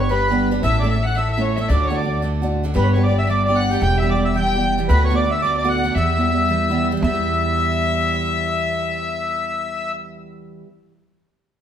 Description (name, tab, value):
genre	celtic folk, Celtic reel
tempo	225 BPM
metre	4/4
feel	swing 57% on 8ths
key	E dorian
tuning	A4 = 440 Hz
part	accordion	melody	0.0-9.9 s	B4 to G5	-22 LUFS	equal	none
part	rich fiddle	second line	0.0-9.9 s	B4 to G5	-26 LUFS	left 3 dB	none
part	picked steel-string acoustic guitar	accompaniment	0.0-10.7 s	D2 to A4	-23 LUFS	right 2 dB	none
part	upright bass	bass	0.0-10.6 s	E1 to E2	-21 LUFS	equal	none
room	moderate large studio reverb, RT60 1.2 s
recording	band playing live in one room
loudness	-17 LUFS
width	side -9 dB against mid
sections	0.0-7.0 A section; 7.0-9.2 B section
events	none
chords	0.0 G; 0.6 A; 1.7 D; 2.8 G; 3.8 Em; 4.9 D6; 6.0 Em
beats	0.09 0.36 | 0.62 0.89 1.16 1.42 | 1.69 1.96 2.22 2.49 | 2.75 3.02 3.29 3.55 | 3.82 4.09 4.35 4.62 | 4.89 5.15 5.42 5.69 | 5.95 6.22 6.49 6.75 | 7.02 7.29 7.55 7.82 | 8.09 8.35 8.62 8.89